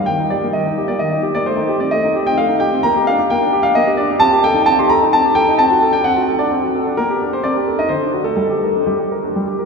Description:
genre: classical-period piano sonatina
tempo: 130 BPM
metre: 3/4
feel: straight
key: G minor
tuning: A4 = 443 Hz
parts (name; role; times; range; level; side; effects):
- warm grand piano; solo; 0.0-9.7 s; D3 to C6; -14 LUFS; equal; none
room: wet cathedral reverb, RT60 4.8 s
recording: recorded in a church or concert hall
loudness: -13 LUFS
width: side -4 dB against mid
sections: 0.0-9.7 A section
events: none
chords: 0.1 Eb; 1.5 Am7b5; 2.8 Gm/Bb; 4.2 Am7b5/C; 5.6 D7/C; 7.0 Gm/Bb; 7.4 Am7b5/C; 7.9 D7; 8.4 Gm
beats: | 0.07 0.54 1.00 | 1.46 1.92 2.38 | 2.84 3.30 3.77 | 4.22 4.68 5.13 | 5.59 6.04 6.50 | 6.97 7.43 7.90 | 8.38 8.86 9.34

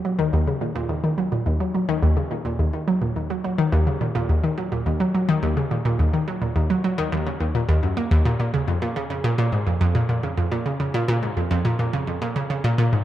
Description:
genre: ambient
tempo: 106 BPM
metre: 4/4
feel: straight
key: Eb minor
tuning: A4 = 440 Hz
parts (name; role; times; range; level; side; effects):
- analog pluck; solo; 0.0-13.0 s; Eb2 to Bb3; -20 LUFS; equal; chorus, analog delay
room: wet spring reverb, RT60 2.7 s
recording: echo-heavy mix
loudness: -20 LUFS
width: side -12 dB against mid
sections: 0.0-13.0 A section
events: none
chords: none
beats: 0.33 0.90 | 1.46 2.03 2.59 3.16 | 3.73 4.29 4.86 5.42 | 5.99 6.56 7.12 7.69 | 8.25 8.82 9.39 9.95 | 10.52 11.08 11.65 12.22 | 12.78

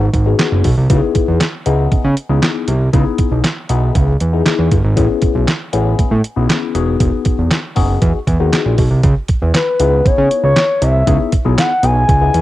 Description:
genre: early-eighties boogie funk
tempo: 118 BPM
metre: 4/4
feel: straight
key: C# minor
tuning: A4 = 440 Hz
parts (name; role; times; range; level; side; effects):
- tine electric piano; accompaniment; 0.0-12.4 s; B3 to G#4; -19 LUFS; left 8 dB; overdrive, phaser, cassette tape
- fat analog bass; bass; 0.0-12.4 s; E1 to C#3; -14 LUFS; right 1 dB; none
- detuned 8-bit digital drum machine; drums; 0.1-12.4 s; handclaps, hi-hat, kick drum, snare drum; -16 LUFS; right 1 dB; none
- gliding portamento lead; melody; 9.6-12.4 s; B4 to G#5; -14 LUFS; left 2 dB; chorus, cassette tape
room: digital ambience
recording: home recording on cassette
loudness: -12 LUFS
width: side -15 dB against mid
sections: 0.0-9.0 A section; 9.0-12.4 B section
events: none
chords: 0.0 Emaj9 (rootless); 0.9 C#m9; 5.0 Amaj9; 6.7 Emaj9; 9.0 C#m9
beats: 0.39 | 0.90 1.41 1.92 2.43 | 2.94 3.44 3.95 4.46 | 4.97 5.48 5.99 6.50 | 7.00 7.51 8.02 8.53 | 9.04 9.54 10.05 10.56 | 11.07 11.58 12.09

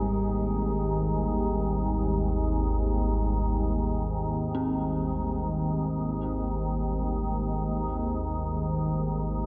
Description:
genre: dark ambient drone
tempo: free time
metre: none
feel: none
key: unclear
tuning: A4 = 442 Hz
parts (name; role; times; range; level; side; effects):
- organ-like drone; drone; 0.0-9.5 s; Ab1 to Eb2; -29 LUFS; equal; ensemble chorus, built-in reverb
- quartz singing bowl; texture; 0.0-9.5 s; G3 to G4; -36 LUFS; equal; none
- dark detuned synth bell; arpeggios; 4.5-9.5 s; C4; -39 LUFS; equal; chorus, diffuse ambient delay
room: wet cathedral reverb, RT60 6.2 s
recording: dark, warm production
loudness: -28 LUFS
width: mono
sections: 0.0-9.5 A section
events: none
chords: 0.0 Cm/Ab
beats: free time

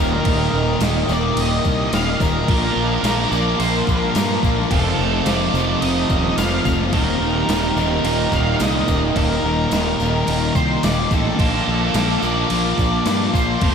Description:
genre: rock, shoegaze and dream pop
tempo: 108 BPM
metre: 4/4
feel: straight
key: Eb lydian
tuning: A4 = 440 Hz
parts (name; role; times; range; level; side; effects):
- octave-fuzz lead guitar; melody; 0.0-13.7 s; A4 to F5; -25 LUFS; left 2 dB; distortion, analog delay
- hollow soft pad; sustained chords; 0.0-13.7 s; Bb3 to Eb6; -28 LUFS; left 1 dB; chorus
- biting overdriven guitar; riff; 0.0-13.7 s; Eb2 to F4; -24 LUFS; right 8 dB; reverse reverb
- distorted electric guitar; riff; 0.0-13.7 s; Eb2 to Bb3; -26 LUFS; equal; overdrive
- thick fuzz guitar; riff; 0.0-13.7 s; Eb2 to Bb3; -24 LUFS; left 7 dB; distortion, wide subtle chorus
- fuzz fingered electric bass; bass; 0.0-13.7 s; Eb1 to G2; -23 LUFS; equal; overdrive
- gated 80s digital drum machine; drums; 0.1-13.7 s; crash cymbal, kick drum, snare drum; -23 LUFS; right 1 dB; gated reverb, gated reverb snare
- tambourine; percussion; 0.8-13.7 s; none; -38 LUFS; left 15 dB; none
room: wet huge ambient reverb, RT60 8.4 s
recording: dreamy mix soaked in reverb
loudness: -16 LUFS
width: side -6 dB against mid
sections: 0.0-13.7 A section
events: none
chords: 0.0 Eb; 2.5 Bbmaj7; 4.7 F7; 6.9 Eb; 11.4 Bbmaj7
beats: | 0.26 0.82 1.37 1.93 | 2.48 3.04 3.60 4.15 | 4.71 5.26 5.82 6.38 | 6.93 7.49 8.05 8.61 | 9.16 9.72 10.28 10.84 | 11.39 11.95 12.51 13.07 | 13.62

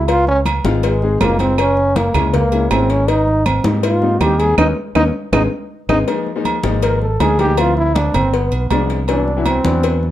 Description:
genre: Afro-Cuban jazz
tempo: 160 BPM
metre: 4/4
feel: straight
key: unclear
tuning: A4 = 440 Hz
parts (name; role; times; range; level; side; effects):
- warm trombone; melody; 0.0-10.0 s; Ab3 to Bb4; -18 LUFS; equal; plate reverb
- clear upright piano; accompaniment; 0.0-10.0 s; E3 to B4; -21 LUFS; left 5 dB; none
- mellow fretless electric bass; bass; 0.0-10.1 s; Gb1 to Ab2; -18 LUFS; equal; none
- agogo bells and timbales; percussion; 0.1-10.0 s; none; -23 LUFS; right 5 dB; none
- congas; percussion; 0.1-10.1 s; none; -24 LUFS; left 1 dB; none
- cowbell; percussion; 0.1-10.0 s; none; -24 LUFS; left 6 dB; none
- claves; percussion; 0.5-6.0 s; none; -26 LUFS; right 7 dB; none
room: moderate studio reverb, RT60 0.5 s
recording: dark, warm production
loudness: -13 LUFS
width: side -12 dB against mid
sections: 0.0-6.1 A section; 6.1-10.1 A section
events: trombone solo 0.0-10.1; band accent 4.6-6.1; drum fill 5.3-6.1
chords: 0.1 Dbmaj9; 1.6 Gb9; 3.1 Abmaj9; 4.6 Eb5; 5.3 Ab; 6.1 Fm11; 7.6 Dm9; 8.3 G7b9; 9.1 Cmaj9#11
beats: | 0.08 0.46 0.83 1.21 | 1.59 1.96 2.34 2.71 | 3.09 3.46 3.83 4.21 | 4.58 4.96 5.33 5.71 | 6.08 6.46 6.83 7.21 | 7.58 7.96 8.33 8.71 | 9.08 9.46 9.84

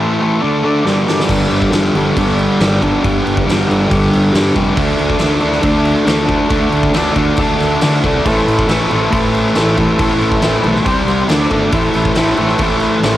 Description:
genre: garage rock duo or trio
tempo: 138 BPM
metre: 4/4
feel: straight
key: unclear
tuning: A4 = 439 Hz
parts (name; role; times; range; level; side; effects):
- overdriven combo organ; sustained chords; 0.0-1.2, 8.2-13.2 s; C4 to D5; -22 LUFS; equal; cassette tape
- fuzz guitar; riff; 0.0-13.2 s; G2 to D4; -13 LUFS; equal; distortion, cassette tape
- oversized low-tuned drum kit; drums; 0.9-13.1 s; crash cymbal, kick drum, snare drum; -18 LUFS; equal; cassette tape
- fuzz fingered electric bass; bass; 1.3-13.2 s; F1 to D3; -20 LUFS; equal; overdrive
room: light reverb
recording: home recording on cassette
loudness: -11 LUFS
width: side -13 dB against mid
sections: 0.0-1.3 A section; 1.3-13.2 B section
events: break 0.0-1.3; drum fill 0.9-1.3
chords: 0.4 D5; 0.9 G5; 4.8 D5; 8.3 Am; 10.9 C5; 11.3 D5; 11.7 Am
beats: 0.42 0.86 | 1.29 1.73 2.16 2.60 | 3.04 3.47 3.90 4.34 | 4.78 5.21 5.64 6.08 | 6.51 6.95 7.38 7.82 | 8.25 8.69 9.12 9.55 | 9.99 10.42 10.86 11.29 | 11.73 12.16 12.60 13.04

